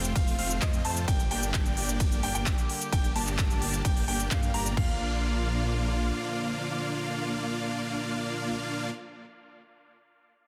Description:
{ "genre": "EDM, festival progressive house", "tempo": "130 BPM", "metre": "4/4", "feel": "straight", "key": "Bb major", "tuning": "A4 = 439 Hz", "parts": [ { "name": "rich studio string section", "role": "sustained chords", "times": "0.0-8.9 s", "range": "C3 to G4", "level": "-42 LUFS", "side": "equal", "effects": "sidechain pumping" }, { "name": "bright grand piano", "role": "arpeggios", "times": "0.0-8.9 s", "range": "Eb5 to Bb5", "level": "-40 LUFS", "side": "equal", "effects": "sidechain pumping, dub echo" }, { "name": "dense compressed supersaw", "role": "riff", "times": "0.0-8.9 s", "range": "A3 to Bb5", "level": "-35 LUFS", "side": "equal", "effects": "sidechain pumping, dub echo" }, { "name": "detuned saw bass", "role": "bass", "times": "0.0-6.1 s", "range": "F1 to G2", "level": "-34 LUFS", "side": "equal", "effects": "sidechain pumping" }, { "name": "big-room dance drum kit", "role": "drums", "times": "0.0-4.8 s", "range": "cabasa, handclaps, hi-hat, ride cymbal", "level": "-35 LUFS", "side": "equal", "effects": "none" }, { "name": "big-room dance drum kit", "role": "drums", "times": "0.2-4.9 s", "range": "crash cymbal, kick drum, toms", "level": "-30 LUFS", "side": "equal", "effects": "none" } ], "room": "light reverb", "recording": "dense, heavily limited modern master", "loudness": "-29 LUFS", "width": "mono", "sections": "0.0-4.8 A section; 4.8-8.5 B section", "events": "drop 0.0-4.8", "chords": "0.0 F; 1.1 Gm; 4.8 Bb", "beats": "0.16 0.62 | 1.08 1.54 2.00 2.46 | 2.93 3.39 3.85 4.31 | 4.77 5.23 5.70 6.16 | 6.62 7.08 7.54 8.00" }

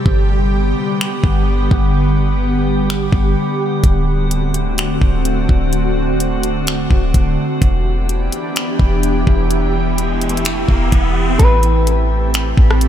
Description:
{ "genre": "hip hop, atmospheric cloud-rap", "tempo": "127 BPM", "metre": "4/4", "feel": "half-time", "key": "E minor", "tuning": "A4 = 440 Hz", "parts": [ { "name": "ethereal airy pad", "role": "sustained chords", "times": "0.0-12.9 s", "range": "D3 to G4", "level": "-18 LUFS", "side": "equal", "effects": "ensemble chorus, built-in reverb, sidechain pumping" }, { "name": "drifting glass-harmonics texture", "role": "texture", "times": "0.0-12.9 s", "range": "B3 to G5", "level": "-26 LUFS", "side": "equal", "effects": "chorus, built-in reverb" }, { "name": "clean 808-style bass", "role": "bass", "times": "0.1-12.9 s", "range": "D1 to A1", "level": "-16 LUFS", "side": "equal", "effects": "none" }, { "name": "trap drum kit", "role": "drums", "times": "0.1-12.9 s", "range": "finger snaps, hi-hat, kick drum, rim click", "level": "-16 LUFS", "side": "equal", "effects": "none" }, { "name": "riser", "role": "sound effects", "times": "9.0-11.4 s", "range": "none", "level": "-26 LUFS", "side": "equal", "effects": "none" }, { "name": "mellow electric guitar", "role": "melody", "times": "11.4-12.3 s", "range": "B4", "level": "-20 LUFS", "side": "left 2 dB", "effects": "low-pass filter, ping-pong delay" } ], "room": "little or no reverb", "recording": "none", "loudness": "-13 LUFS", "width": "side -10 dB against mid", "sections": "0.0-11.4 A section; 11.4-12.9 B section", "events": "break 0.0-3.8; riser 9.0-11.4", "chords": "0.1 Gmaj7; 3.8 D7; 7.6 Em7; 11.4 Am7", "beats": "| 0.06 0.53 1.00 1.48 | 1.95 2.42 2.89 3.36 | 3.84 4.31 4.78 5.25 | 5.73 6.20 6.67 7.14 | 7.62 8.09 8.56 9.03 | 9.51 9.98 10.45 10.92 | 11.40 11.87 12.34 12.81" }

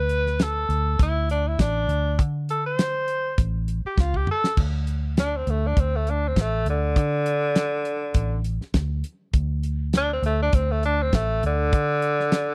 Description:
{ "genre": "straight-eighth soul blues", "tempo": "101 BPM", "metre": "4/4", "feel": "swing 56% on 16ths", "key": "unclear", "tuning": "A4 = 439 Hz", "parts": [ { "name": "warm tenor saxophone", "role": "melody", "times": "0.0-12.5 s", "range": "D3 to C5", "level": "-27 LUFS", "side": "equal", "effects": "none" }, { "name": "vintage muted fingered electric bass", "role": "bass", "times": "0.0-12.5 s", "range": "A1 to D3", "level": "-28 LUFS", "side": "equal", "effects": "none" }, { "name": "damped 70s drum kit", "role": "drums", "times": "0.1-12.5 s", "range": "crash cymbal, hi-hat, kick drum, snare drum, toms", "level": "-24 LUFS", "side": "equal", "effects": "none" } ], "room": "small room ambience", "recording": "dry, close 1970s-style studio recording", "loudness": "-24 LUFS", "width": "mono", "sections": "0.0-4.6 A section; 4.6-12.5 B section", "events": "drum fill 4.0-4.6; tenor saxophone solo 4.6-12.5", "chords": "0.0 D5; 3.4 A; 4.6 D5", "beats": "0.40 0.99 1.59 | 2.19 2.78 3.38 3.98 | 4.57 5.17 5.77 6.36 | 6.96 7.56 8.15 8.75 | 9.35 9.94 10.54 11.13 | 11.73 12.33" }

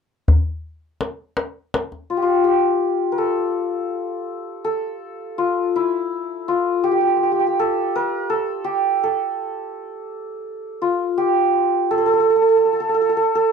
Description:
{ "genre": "Persian modal ensemble", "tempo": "55 BPM (dotted quarters)", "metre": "6/8", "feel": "straight", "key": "A dastgah homayun", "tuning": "A4 = 441 Hz", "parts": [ { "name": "tombak", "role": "percussion", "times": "0.3-2.0 s", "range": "none", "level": "-18 LUFS", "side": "left 1 dB", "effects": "none" }, { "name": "santur", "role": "melody", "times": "2.1-13.5 s", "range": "E4 to Bb4+45c", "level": "-18 LUFS", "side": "equal", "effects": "none" } ], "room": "wet booth ambience, RT60 0.2 s", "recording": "dark, warm production", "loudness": "-18 LUFS", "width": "side -6 dB against mid", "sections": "0.3-2.5 A section; 2.5-11.2 B section; 11.2-13.5 B section", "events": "none", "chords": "none", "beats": "| 0.28 1.38 | 2.47 3.56 | 4.66 5.75 | 6.84 7.92 | 9.01 10.10 | 11.19 12.27 | 13.36" }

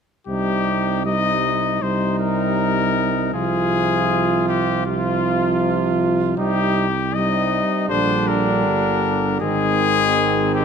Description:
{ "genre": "classical, brass quintet", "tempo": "79 BPM", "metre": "4/4", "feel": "straight", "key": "C minor", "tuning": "A4 = 436 Hz", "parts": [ { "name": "clear trumpet", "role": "melody", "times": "0.3-10.6 s", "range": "F4 to Eb5", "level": "-21 LUFS", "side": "left 9 dB", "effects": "none" }, { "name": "mellow trumpet", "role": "second line", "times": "0.3-10.6 s", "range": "C4 to F4", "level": "-25 LUFS", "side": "right 7 dB", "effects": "none" }, { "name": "bright trombone", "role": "accompaniment", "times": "0.3-10.6 s", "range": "C3 to Eb3", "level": "-26 LUFS", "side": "right 5 dB", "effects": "none" }, { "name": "mellow French horn", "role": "accompaniment", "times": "0.3-10.6 s", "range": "F3 to Ab3", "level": "-24 LUFS", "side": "left 3 dB", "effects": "none" }, { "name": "mellow tuba", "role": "bass", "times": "0.3-10.6 s", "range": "G1 to C2", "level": "-24 LUFS", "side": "right 5 dB", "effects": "none" } ], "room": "moderate scoring stage reverb, RT60 1.7 s", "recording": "none", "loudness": "-17 LUFS", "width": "side -6 dB against mid", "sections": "0.3-10.6 A section", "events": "none", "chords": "0.3 Cm; 3.3 Fm/C; 6.4 Cm; 7.9 Gm/Bb; 9.4 Ab", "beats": "| 0.28 1.06 1.82 2.58 | 3.34 4.10 4.86 5.62 | 6.38 7.15 7.90 8.66 | 9.42 10.17" }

